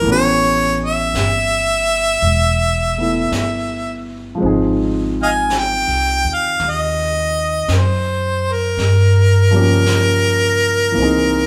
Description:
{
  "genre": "jazz ballad",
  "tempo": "55 BPM",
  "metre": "4/4",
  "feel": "swing 68% on 8ths",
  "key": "unclear",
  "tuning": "A4 = 441 Hz",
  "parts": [
    { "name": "bright harmonica", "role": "melody", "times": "0.0-11.5 s", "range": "Bb4 to Ab5", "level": "-19 LUFS", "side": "equal", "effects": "none" },
    { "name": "warm baby grand piano", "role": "accompaniment", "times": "0.0-11.5 s", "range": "E3 to Ab4", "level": "-23 LUFS", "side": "equal", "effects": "none" },
    { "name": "upright bass", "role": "bass", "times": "0.0-11.5 s", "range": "E1 to G2", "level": "-21 LUFS", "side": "equal", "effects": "none" },
    { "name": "jazz brush drum kit", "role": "drums", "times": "0.1-11.5 s", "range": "brushed snare drum, hi-hat, snare drum", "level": "-32 LUFS", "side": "equal", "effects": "none" }
  ],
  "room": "wet large studio reverb, RT60 1.1 s",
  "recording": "band playing live in one room",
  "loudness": "-16 LUFS",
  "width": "mono",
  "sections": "0.0-11.5 A section",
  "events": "none",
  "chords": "0.1 A9; 4.4 Ab6; 8.8 Gm7b5; 11.0 C7alt"
}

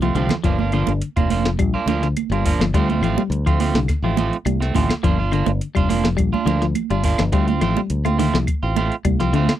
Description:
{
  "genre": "afrobeat",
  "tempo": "105 BPM",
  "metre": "4/4",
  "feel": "straight",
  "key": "G minor",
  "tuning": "A4 = 435 Hz",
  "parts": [
    { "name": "clean electric guitar", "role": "arpeggios", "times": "0.0-9.5 s", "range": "D3 to A3", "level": "-24 LUFS", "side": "left 7 dB", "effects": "none" },
    { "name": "electric guitar at the edge of break-up", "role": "stabs", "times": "0.0-9.5 s", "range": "F3 to F4", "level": "-23 LUFS", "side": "right 5 dB", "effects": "none" },
    { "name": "fingered electric bass", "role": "bass", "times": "0.0-9.5 s", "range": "F1 to D2", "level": "-21 LUFS", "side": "left 1 dB", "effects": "none" },
    { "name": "soft vintage rhythm box", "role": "drums", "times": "0.0-9.6 s", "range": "hi-hat, kick drum, snare drum", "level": "-22 LUFS", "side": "left 1 dB", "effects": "none" },
    { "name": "congas", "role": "percussion", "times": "0.0-9.5 s", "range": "none", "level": "-26 LUFS", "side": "right 14 dB", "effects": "none" },
    { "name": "claves", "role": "percussion", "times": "0.3-9.6 s", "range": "none", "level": "-33 LUFS", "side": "left 1 dB", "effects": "none" }
  ],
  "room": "little or no reverb",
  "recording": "dry, close 1970s-style studio recording",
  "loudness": "-17 LUFS",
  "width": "side -12 dB against mid",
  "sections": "0.0-9.6 A section",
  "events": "drum fill 0.0-0.4",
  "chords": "0.4 Gm7; 2.7 Dm7; 5.0 Gm7; 7.3 Dm7"
}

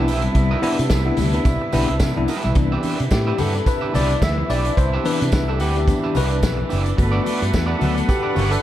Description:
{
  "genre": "disco",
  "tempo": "108 BPM",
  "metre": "4/4",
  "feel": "swing 56% on 16ths",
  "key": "unclear",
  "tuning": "A4 = 439 Hz",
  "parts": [
    { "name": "bell-like tine electric piano", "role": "accompaniment", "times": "0.0-8.6 s", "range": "C3 to E5", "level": "-24 LUFS", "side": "left 4 dB", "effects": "medium stereo tremolo" },
    { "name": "electric guitar at the edge of break-up", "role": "accompaniment", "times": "0.0-8.6 s", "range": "D4 to F#5", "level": "-28 LUFS", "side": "right 5 dB", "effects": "harmonic tremolo" },
    { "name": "rich chamber string section", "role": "sustained chords", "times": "0.0-8.6 s", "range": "C3 to F#5", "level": "-25 LUFS", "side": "right 1 dB", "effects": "none" },
    { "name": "fingered electric bass with an envelope filter", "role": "bass", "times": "0.0-8.6 s", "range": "F#1 to C3", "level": "-21 LUFS", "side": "equal", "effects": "none" },
    { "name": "vintage drum kit", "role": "drums", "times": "0.1-8.6 s", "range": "hi-hat, kick drum, snare drum", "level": "-23 LUFS", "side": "equal", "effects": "none" },
    { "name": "tambourine", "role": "percussion", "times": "0.1-8.5 s", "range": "none", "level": "-42 LUFS", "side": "right 10 dB", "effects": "none" },
    { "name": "congas", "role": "percussion", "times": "0.6-8.5 s", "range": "none", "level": "-29 LUFS", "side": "left 4 dB", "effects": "none" }
  ],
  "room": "small room reverb",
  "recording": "dark, warm production",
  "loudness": "-17 LUFS",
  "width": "side -12 dB against mid",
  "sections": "0.0-2.6 A section; 2.6-8.6 B section",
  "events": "tine electric piano solo 2.6-8.6",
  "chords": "0.0 Cmaj7; 2.6 Cmaj9; 7.0 Gmaj7"
}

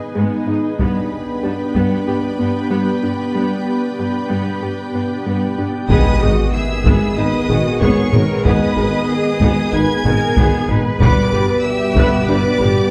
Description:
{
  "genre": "cinematic, hybrid orchestral and electronic film score",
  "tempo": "94 BPM",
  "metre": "4/4",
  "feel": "straight",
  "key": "unclear",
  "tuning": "A4 = 438 Hz",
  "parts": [
    { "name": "clear symphonic violin section", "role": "second line", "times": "0.0-12.9 s", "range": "B4 to B5", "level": "-30 LUFS", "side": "equal", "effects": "none" },
    { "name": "dark French horn section", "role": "sustained chords", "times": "0.0-12.9 s", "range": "B3 to B4", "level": "-26 LUFS", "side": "equal", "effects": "low-pass filter" },
    { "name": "soft additive organ-like pad", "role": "sustained chords", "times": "0.0-12.9 s", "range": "G3 to G5", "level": "-27 LUFS", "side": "equal", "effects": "ensemble chorus, built-in reverb, low-pass filter" },
    { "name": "glassy wavetable pluck", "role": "arpeggios", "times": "0.0-12.8 s", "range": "G3 to G#4", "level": "-25 LUFS", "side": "equal", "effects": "chorus, low-pass filter, tape echo" },
    { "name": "clear symphonic viola section", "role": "accompaniment", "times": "0.2-12.7 s", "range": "D3 to B4", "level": "-27 LUFS", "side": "equal", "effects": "low-pass filter" },
    { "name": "rich symphonic cello section", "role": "bass", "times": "0.2-12.9 s", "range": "G2 to B4", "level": "-27 LUFS", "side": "equal", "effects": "none" },
    { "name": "taiko ensemble", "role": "drums", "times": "0.8-2.0, 5.9-12.9 s", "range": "none", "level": "-22 LUFS", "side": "equal", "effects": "none" },
    { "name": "warm symphonic violin section", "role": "melody", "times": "5.9-12.9 s", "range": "C#6 to G#6", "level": "-29 LUFS", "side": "equal", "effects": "low-pass filter" },
    { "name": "mellow trombone section", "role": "sustained chords", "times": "5.9-12.9 s", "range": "G#2 to G3", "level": "-28 LUFS", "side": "equal", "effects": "none" },
    { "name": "clear symphonic double bass section", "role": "bass", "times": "5.9-12.7 s", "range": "G1 to G#1", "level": "-24 LUFS", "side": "equal", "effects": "none" },
    { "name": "mellow tuba", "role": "bass", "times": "5.9-12.7 s", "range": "G1 to G#1", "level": "-26 LUFS", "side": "equal", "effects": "none" },
    { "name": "impact", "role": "sound effects", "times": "5.9-8.5 s", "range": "none", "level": "-23 LUFS", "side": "equal", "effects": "none" }
  ],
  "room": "wet scoring stage reverb, RT60 1.8 s",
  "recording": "dark, warm production",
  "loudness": "-17 LUFS",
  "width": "mono",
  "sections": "0.0-5.9 A section; 5.9-12.9 B section",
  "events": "filter sweep 0.0-5.9; impact 5.9-8.5",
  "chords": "0.0 G#m; 0.8 G; 5.9 G#m; 11.0 G"
}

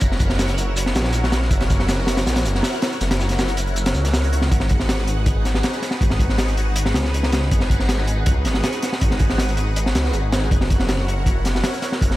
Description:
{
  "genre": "drum and bass, jungle",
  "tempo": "160 BPM",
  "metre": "4/4",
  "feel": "straight",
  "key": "G# minor",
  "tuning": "A4 = 440 Hz",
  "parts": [
    { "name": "lush unison pad", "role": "sustained chords", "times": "0.0-12.2 s", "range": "D#4 to F#5", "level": "-27 LUFS", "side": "equal", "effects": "chorus, phaser" },
    { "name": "detuned saw bass", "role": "bass", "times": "0.0-12.2 s", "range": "F#1 to C#2", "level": "-21 LUFS", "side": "equal", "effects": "tube saturation" },
    { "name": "crunchy breakbeat drum kit", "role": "drums", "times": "0.0-12.2 s", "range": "hi-hat, kick drum, snare drum", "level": "-20 LUFS", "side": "equal", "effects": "none" },
    { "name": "crunchy breakbeat drum kit", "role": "drums", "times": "0.0-4.2 s", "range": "hi-hat, shaker, snare drum", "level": "-33 LUFS", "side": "equal", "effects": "high-pass filter on hats, high-pass filter on snare, high-pass filter on perc, high-pass filter on room" }
  ],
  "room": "small room ambience",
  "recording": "none",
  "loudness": "-17 LUFS",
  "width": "side -16 dB against mid",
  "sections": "0.0-4.5 A section; 4.5-12.2 A section",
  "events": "drop 0.0-4.5, 4.5-12.2",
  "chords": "0.0 F#7; 4.5 G#m7; 10.5 F#7"
}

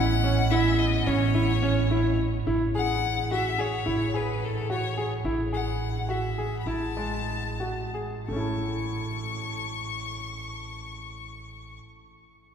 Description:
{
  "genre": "contemporary instrumental, chamber music in an uneven meter",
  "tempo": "168-218 BPM (eighths)",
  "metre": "5/8",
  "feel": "straight",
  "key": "A major",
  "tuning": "A4 = 440 Hz",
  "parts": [
    { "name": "bright violin", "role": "melody", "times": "0.0-11.8 s", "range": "A4 to C#6", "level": "-32 LUFS", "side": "left 6 dB", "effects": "none" },
    { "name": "clear woodwind section", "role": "sustained chords", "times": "0.0-2.4 s", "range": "G#3 to C#4", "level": "-36 LUFS", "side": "right 1 dB", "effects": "none" },
    { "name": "bright baby grand piano", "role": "arpeggios", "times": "0.0-11.9 s", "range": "G#3 to A4", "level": "-29 LUFS", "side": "equal", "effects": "none" },
    { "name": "upright bass", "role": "bass", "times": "0.0-11.8 s", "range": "A1", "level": "-29 LUFS", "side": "right 2 dB", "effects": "none" }
  ],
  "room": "wet cathedral reverb, RT60 5.4 s",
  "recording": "recorded in a church or concert hall",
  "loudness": "-24 LUFS",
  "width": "side -8 dB against mid",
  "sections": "0.0-2.5 A section; 2.5-8.3 B section; 8.3-11.8 C section",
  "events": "slowing down 5.2-8.3",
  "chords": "0.0 Amaj7; 2.5 Amaj7(no3); 8.3 A"
}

